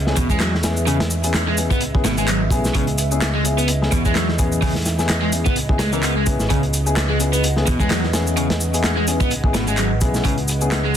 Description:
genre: breakbeat, breaks.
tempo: 128 BPM.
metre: 4/4.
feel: swing 56% on 16ths.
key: C# minor.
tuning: A4 = 441 Hz.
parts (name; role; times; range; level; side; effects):
dark analog pad; sustained chords; 0.0-11.0 s; C#4 to F#5; -29 LUFS; equal; chorus, sidechain pumping.
overdriven picked electric bass; bass; 0.0-11.0 s; G#1 to E2; -22 LUFS; equal; none.
dark concert grand piano; stabs; 0.1-10.8 s; B3 to A#4; -26 LUFS; left 5 dB; dub echo.
crunchy breakbeat drum kit; drums; 0.1-11.0 s; hi-hat, kick drum, snare drum; -22 LUFS; equal; none.
overdriven electric guitar; riff; 0.2-10.9 s; B2 to B3; -24 LUFS; equal; dub echo.
electronic shaker and handclaps; drums; 0.2-11.0 s; none; -26 LUFS; equal; none.
room: light reverb, small room ambience.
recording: dense, heavily limited modern master.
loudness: -16 LUFS.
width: side -9 dB against mid.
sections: 0.0-11.0 A section.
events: none.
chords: 0.0 C#m7.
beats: 0.40 | 0.87 1.34 1.81 2.28 | 2.75 3.22 3.68 4.15 | 4.62 5.09 5.56 6.03 | 6.50 6.97 7.43 7.90 | 8.37 8.84 9.31 9.78 | 10.25 10.72.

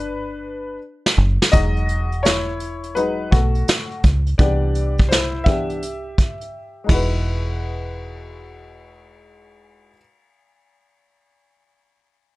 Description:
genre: hip hop, jazz-hop.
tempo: 84 BPM.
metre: 4/4.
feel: swing 65% on 16ths.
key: E major.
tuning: A4 = 442 Hz.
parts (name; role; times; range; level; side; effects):
warm upright piano; accompaniment; 0.0-10.0 s; E3 to E5; -24 LUFS; left 2 dB; none.
deep dub fingered electric bass; bass; 0.0-10.0 s; E1 to C#2; -21 LUFS; equal; none.
vintage brush drum kit; drums; 1.1-7.1 s; hi-hat, kick drum, ride cymbal, snare drum; -18 LUFS; equal; vintage 12-bit sampler grit.
room: light reverb.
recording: none.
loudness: -17 LUFS.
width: side -19 dB against mid.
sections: 0.0-1.5 A section; 1.5-7.2 B section; 7.2-10.1 C section.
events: upright piano solo 0.0-1.5, 1.5-7.2; drum fill 0.1-1.5; silent gap 6.5-7.2.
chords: 0.0 Gmaj7; 1.5 Emaj9; 4.4 Cmaj9; 6.9 Emaj9.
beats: 0.10 0.82 | 1.53 2.25 2.96 3.67 | 4.39 5.10 5.82 6.53 | 7.25 7.96 8.68 9.39.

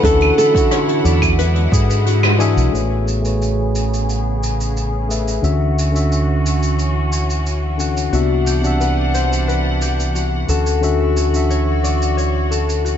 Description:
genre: sunset chillout.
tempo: 89 BPM.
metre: 4/4.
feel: straight.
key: A major.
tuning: A4 = 438 Hz.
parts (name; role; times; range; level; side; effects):
flamenco guitar; melody; 0.0-1.0 s; A4; -17 LUFS; right 2 dB; digital delay.
tine electric piano; accompaniment; 0.0-13.0 s; C3 to F#5; -21 LUFS; moving between left 7 dB and right 6 dB; auto-pan, low-pass filter, digital delay.
bright symphonic string section; sustained chords; 0.0-13.0 s; C#3 to F#5; -24 LUFS; left 2 dB; vintage 12-bit sampler grit, low-pass filter.
concert harp; arpeggios; 0.0-13.0 s; F#4 to D5; -23 LUFS; left 9 dB; vintage 12-bit sampler grit, digital delay.
mellow fretless electric bass; bass; 0.0-13.0 s; B1 to G#2; -18 LUFS; right 1 dB; none.
electronic kick drum; drums; 0.0-1.9 s; none; -19 LUFS; right 1 dB; overdrive.
jazz brush drum kit; drums; 0.0-13.0 s; claves, hi-hat, rim click, shaker; -25 LUFS; right 2 dB; none.
room: light reverb, studio ambience.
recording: dark, warm production, nothing above 7.7 kHz.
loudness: -14 LUFS.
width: side -9 dB against mid.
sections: 0.0-2.7 A section; 2.7-13.0 B section.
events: band accent 2.2-2.6; filter sweep on tine electric piano 2.7-13.0; filter sweep on string section 2.7-13.0.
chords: 0.0 Dmaj9; 1.4 E9; 2.7 Amaj9; 5.4 Dmaj9; 8.1 Cmaj9#11; 10.5 Dmaj9.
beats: | 0.04 0.71 1.39 2.06 | 2.73 3.41 4.08 4.76 | 5.43 6.11 6.78 7.45 | 8.13 8.80 9.48 10.15 | 10.82 11.50 12.17 12.85.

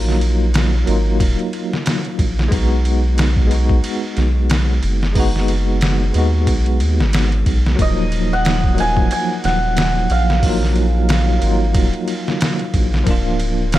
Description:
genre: trip hop.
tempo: 91 BPM.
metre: 4/4.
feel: swing 57% on 16ths.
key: Eb harmonic minor.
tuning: A4 = 440 Hz.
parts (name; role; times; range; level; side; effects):
bell-like tine electric piano; accompaniment; 0.0-13.8 s; F3 to F#4; -21 LUFS; left 1 dB; fast stereo tremolo, tape echo.
soft dub sub bass; bass; 0.0-13.8 s; D1 to D#2; -17 LUFS; equal; none.
trip hop sampler-style drum kit; drums; 0.1-13.8 s; hi-hat, kick drum, ride cymbal, snare drum; -20 LUFS; equal; small room reverb.
hammered dulcimer; melody; 7.8-13.8 s; Eb5 to Ab5; -22 LUFS; right 2 dB; tape echo.
room: digital ambience.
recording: none.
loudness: -14 LUFS.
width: side -15 dB against mid.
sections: 0.0-13.8 A section.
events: none.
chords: 0.0 Ebmadd9; 2.5 B6; 7.8 Ebmadd9; 13.1 Bb/D.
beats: 0.54 1.20 1.86 | 2.52 3.18 3.84 4.50 | 5.16 5.82 6.47 7.13 | 7.79 8.45 9.11 9.77 | 10.43 11.09 11.75 12.41 | 13.07 13.73.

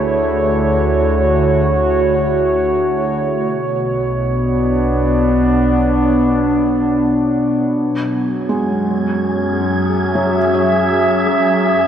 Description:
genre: ambient.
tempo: free time.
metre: none.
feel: none.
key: F# minor.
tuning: A4 = 440 Hz.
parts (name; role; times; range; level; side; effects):
warbly tape-like pad; sustained chords; 0.0-11.9 s; B2 to E5; -14 LUFS; equal; chorus, built-in reverb.
deep rumbling drone; bass; 0.0-11.9 s; B1 to F#2; -24 LUFS; equal; built-in reverb.
wind-like tuned noise texture; texture; 8.5-11.9 s; G#4 to G#6; -22 LUFS; left 2 dB; built-in reverb.
felt-muted upright piano; arpeggios; 8.5-11.9 s; F#3 to C#5; -20 LUFS; right 1 dB; analog delay.
room: wet plate reverb, RT60 3.7 s.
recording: echo-heavy mix.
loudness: -13 LUFS.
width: side -9 dB against mid.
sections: 0.0-11.9 A section.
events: none.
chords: 0.0 Dmaj9#11; 3.3 Bm; 7.8 F#sus2.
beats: free time.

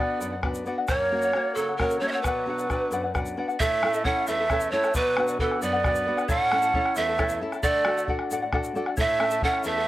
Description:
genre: andean folk, Andean ensemble.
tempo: 89 BPM (dotted quarters).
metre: 6/8.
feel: straight.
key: B minor.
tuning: A4 = 440 Hz.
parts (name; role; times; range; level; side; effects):
breathy mellow pan flute; melody; 0.0-9.9 s; A4 to F#5; -25 LUFS; right 2 dB; analog delay.
mellow cor anglais; second line; 0.0-9.9 s; E3 to C#4; -32 LUFS; right 1 dB; none.
charango; accompaniment; 0.0-9.9 s; E4 to A5; -30 LUFS; left 3 dB; none.
nylon-string guitar; accompaniment; 0.0-9.9 s; E2 to F#4; -33 LUFS; left 1 dB; none.
bombo; percussion; 0.1-9.6 s; none; -29 LUFS; left 1 dB; none.
egg shaker; percussion; 0.2-9.7 s; none; -42 LUFS; left 3 dB; none.
room: light reverb.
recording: dry, gritty hardware recording, vinyl crackle.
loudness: -22 LUFS.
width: side -15 dB against mid.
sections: 0.0-3.6 A section; 3.6-9.9 B section.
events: none.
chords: 0.0 Bm; 0.9 F#; 2.2 Bm; 3.6 A; 4.9 Bm; 6.3 A; 7.6 D; 9.0 A.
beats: 0.20 | 0.88 1.56 | 2.24 2.92 | 3.60 4.27 | 4.95 5.62 | 6.29 6.96 | 7.63 8.30 | 8.97 9.64.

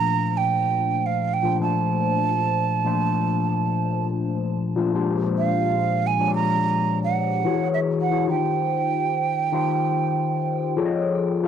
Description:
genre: R&B.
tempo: 72 BPM.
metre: 4/4.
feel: swing 59% on 16ths.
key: Bb major.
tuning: A4 = 437 Hz.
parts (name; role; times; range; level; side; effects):
breathy hollow jazz flute; melody; 0.0-10.7 s; E5 to Bb5; -24 LUFS; right 10 dB; cassette tape, plate reverb, analog delay.
overdriven tine electric piano; accompaniment; 0.0-11.5 s; Bb2 to Eb5; -22 LUFS; left 4 dB; phaser, cassette tape.
room: moderate small room reverb, RT60 0.6 s.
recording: home recording on cassette.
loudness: -20 LUFS.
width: side -8 dB against mid.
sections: 0.0-11.5 A section.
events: none.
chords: 0.0 Bbmaj9; 4.9 Bb13; 7.4 E69; 8.3 Eb69; 10.8 F7alt.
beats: 0.77 | 1.60 2.44 3.27 4.10 | 4.94 5.77 6.60 7.44 | 8.27 9.10 9.94 10.77.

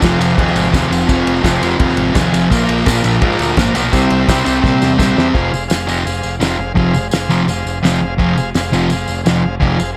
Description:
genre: garage rock duo or trio.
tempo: 169 BPM.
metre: 4/4.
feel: straight.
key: F dorian, F minor from 5.4 s.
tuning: A4 = 439 Hz.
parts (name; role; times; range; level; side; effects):
combo organ; sustained chords; 0.0-10.0 s; G4 to Ab5; -25 LUFS; equal; none.
fuzz guitar; riff; 0.0-9.8 s; F2 to C4; -16 LUFS; equal; distortion.
growling picked electric bass; bass; 0.0-10.0 s; F1 to Bb2; -24 LUFS; equal; overdrive, tube saturation.
cloth-damped thuddy drum kit; drums; 0.0-9.7 s; crash cymbal, kick drum, ride cymbal, snare drum; -21 LUFS; equal; none.
tambourine; percussion; 0.0-9.9 s; none; -31 LUFS; equal; none.
room: light reverb, small room ambience.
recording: none.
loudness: -15 LUFS.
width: mono.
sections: 0.0-5.4 A section; 5.4-10.0 B section.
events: transistor combo organ fill 1.8-2.5, 7.7-8.2; drum fill 4.6-5.4.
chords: 0.0 Fm; 2.5 Bb; 3.9 C; 5.4 Fm.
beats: 0.03 0.38 0.74 | 1.09 1.45 1.80 2.16 | 2.51 2.87 3.22 3.58 | 3.93 4.29 4.64 5.00 | 5.35 5.71 6.06 6.42 | 6.78 7.13 7.49 7.84 | 8.20 8.55 8.91 9.27 | 9.62.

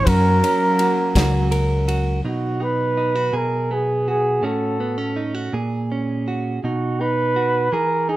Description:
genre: acoustic folk-pop ballad.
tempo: 55 BPM (dotted quarters).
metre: 6/8.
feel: straight.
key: B major.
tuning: A4 = 439 Hz.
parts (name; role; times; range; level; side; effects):
mellow flugelhorn; melody; 0.0-8.2 s; F#4 to B4; -20 LUFS; right 1 dB; none.
direct-recorded clean electric guitar; accompaniment; 0.0-8.2 s; A2 to A#4; -23 LUFS; right 2 dB; none.
lush unison pad; sustained chords; 0.0-2.2 s; F#3 to C#4; -29 LUFS; left 1 dB; chorus, tremolo.
fingered electric bass; bass; 0.1-2.2 s; C#2 to F#2; -18 LUFS; left 1 dB; none.
natural country drum kit; drums; 0.1-2.1 s; kick drum, ride cymbal, snare drum; -24 LUFS; left 1 dB; none.
room: light reverb.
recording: none.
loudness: -18 LUFS.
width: side -15 dB against mid.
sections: 0.0-2.2 A section; 2.2-8.2 B section.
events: none.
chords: 0.1 F#; 2.2 B; 3.3 G#m9/B; 4.4 A6; 5.5 F#add9/A#; 6.6 B.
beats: | 0.07 1.15 | 2.24 3.34 | 4.44 5.54 | 6.63 7.72.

